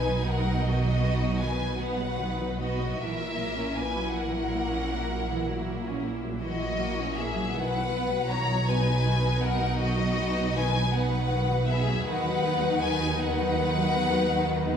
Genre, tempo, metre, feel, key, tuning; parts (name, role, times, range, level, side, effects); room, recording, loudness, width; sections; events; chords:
classical, slow romantic movement for string orchestra; 53 BPM (dotted quarters); 12/8; rubato; B major; A4 = 443 Hz
warm symphonic violin section; melody; 0.0-14.8 s; D#5 to A#5; -31 LUFS; left 4 dB
warm symphonic violin section; second line; 0.0-14.8 s; F#4 to C#5; -32 LUFS; left 4 dB
rich symphonic viola section; accompaniment; 0.0-14.8 s; D#3 to E4; -31 LUFS; right 2 dB
warm studio double bass section; bass; 0.0-14.8 s; A#1 to D#2; -32 LUFS; right 2 dB
warm symphonic cello section; bass; 0.0-14.8 s; A#2 to D#3; -31 LUFS; right 2 dB
wet recital hall reverb, RT60 1.3 s; recorded in a church or concert hall; -24 LUFS; side -8 dB against mid
0.0-14.8 A section
0.0 B; 3.0 F#7/A#; 7.6 B; 12.1 B/D#